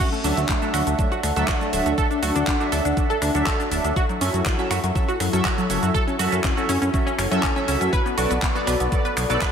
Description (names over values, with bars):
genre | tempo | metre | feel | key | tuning
progressive house | 121 BPM | 4/4 | straight | unclear | A4 = 440 Hz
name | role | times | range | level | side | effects
warm analog pad | sustained chords | 0.0-9.5 s | B3 to F#5 | -28 LUFS | equal | chorus, sidechain pumping
tight sequenced synth | arpeggios | 0.0-9.5 s | F#3 to B4 | -25 LUFS | left 1 dB | chorus, phaser, sidechain pumping, diffuse ambient delay
electronic kick drum | drums | 0.0-9.5 s | none | -24 LUFS | equal | overdrive
pop drum kit | drums | 0.0-9.5 s | crash cymbal, finger snaps, handclaps, hi-hat, shaker | -28 LUFS | right 1 dB | overdrive
chorused polysynth | stabs | 0.2-9.5 s | F#3 to E5 | -27 LUFS | right 2 dB | phaser, sidechain pumping, diffuse ambient delay
fat analog bass | bass | 0.2-9.4 s | D1 to F#2 | -25 LUFS | equal | sidechain pumping
room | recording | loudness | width
moderate lush hall reverb, RT60 1.6 s | dreamy mix soaked in reverb | -19 LUFS | side -7 dB against mid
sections
0.0-9.5 A section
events
none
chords
0.0 Dadd9; 4.0 F#m7; 7.9 Bm7